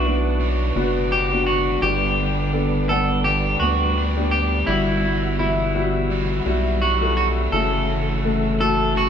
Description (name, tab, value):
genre	piano-driven pop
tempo	84 BPM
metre	4/4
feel	swing 56% on 16ths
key	B minor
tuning	A4 = 439 Hz
part	electric guitar at the edge of break-up	melody	0.0-9.1 s	E4 to A4	-23 LUFS	right 1 dB	spring reverb
part	clear grand piano	accompaniment	0.0-9.1 s	G2 to F#5	-24 LUFS	left 4 dB	none
part	tonewheel organ	sustained chords	0.0-9.1 s	G3 to E6	-32 LUFS	equal	chorus vibrato, slow rotary speaker
part	crunchy overdriven guitar	riff	0.0-9.1 s	F#2 to G4	-28 LUFS	right 4 dB	spring reverb
part	round analog bass	bass	0.0-9.1 s	F#1 to D2	-23 LUFS	right 1 dB	none
room	moderate studio reverb, RT60 0.8 s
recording	band playing live in one room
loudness	-18 LUFS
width	side -8 dB against mid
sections	0.0-9.1 A section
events	none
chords	0.0 Bm; 1.8 G; 4.7 Emadd9/G; 7.5 F#m7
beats	0.41 1.12 | 1.83 2.54 3.25 3.96 | 4.68 5.39 6.10 6.81 | 7.52 8.23 8.95